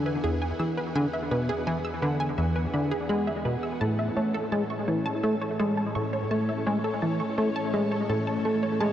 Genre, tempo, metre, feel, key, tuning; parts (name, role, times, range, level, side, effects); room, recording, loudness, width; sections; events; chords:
ambient, sequencer-driven space music; 84 BPM; 4/4; straight; A major; A4 = 439 Hz
phased string machine; sustained chords; 0.0-8.9 s; E2 to A4; -33 LUFS; equal; ensemble chorus, phaser
wide unison pluck; arpeggios; 0.0-8.9 s; G#4 to E6; -33 LUFS; right 2 dB; auto-pan, tape echo
plucky analog bass; riff; 0.0-8.9 s; E2 to A3; -26 LUFS; equal; wide subtle chorus, tape echo
bubbling stepped-filter texture; texture; 0.0-8.9 s; C#5 to F#5; -42 LUFS; left 2 dB; chorus, built-in reverb
wet huge ambient reverb, RT60 7.8 s; worn, warbling old tape, cassette tape, warbly pitch drift; -25 LUFS; side -11 dB against mid
0.0-8.9 A section
0.0 E; 3.8 A